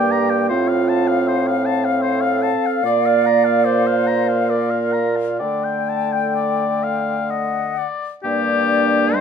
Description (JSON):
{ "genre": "classical, slow romantic movement for wind quintet", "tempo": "62-81 BPM", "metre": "3/4", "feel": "rubato", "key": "G minor", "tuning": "A4 = 440 Hz", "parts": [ { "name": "concert flute", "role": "melody", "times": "0.0-9.2 s", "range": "D5 to G5", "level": "-24 LUFS", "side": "left 13 dB", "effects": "none" }, { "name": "warm oboe", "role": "second line", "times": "0.0-9.2 s", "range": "G4 to Bb5", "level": "-23 LUFS", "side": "left 5 dB", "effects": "none" }, { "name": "dark French horn", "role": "accompaniment", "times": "0.0-9.2 s", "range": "G3 to C4", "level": "-24 LUFS", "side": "equal", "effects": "none" }, { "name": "dark clarinet", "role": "accompaniment", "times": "0.0-9.2 s", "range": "D4 to D5", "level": "-21 LUFS", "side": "right 9 dB", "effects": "none" }, { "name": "warm bassoon", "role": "bass", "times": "0.0-9.2 s", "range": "G2 to D3", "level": "-22 LUFS", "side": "right 1 dB", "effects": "none" } ], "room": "moderate large studio reverb, RT60 1.1 s", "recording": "none", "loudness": "-16 LUFS", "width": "side -7 dB against mid", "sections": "0.0-8.2 A section", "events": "none", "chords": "0.5 F/A; 2.8 Bb; 5.4 Dsus4; 8.2 Gm", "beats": "| 0.50 1.27 2.02 | 2.84 3.65 4.49 | 5.41 6.37 7.32 | 8.25 9.14" }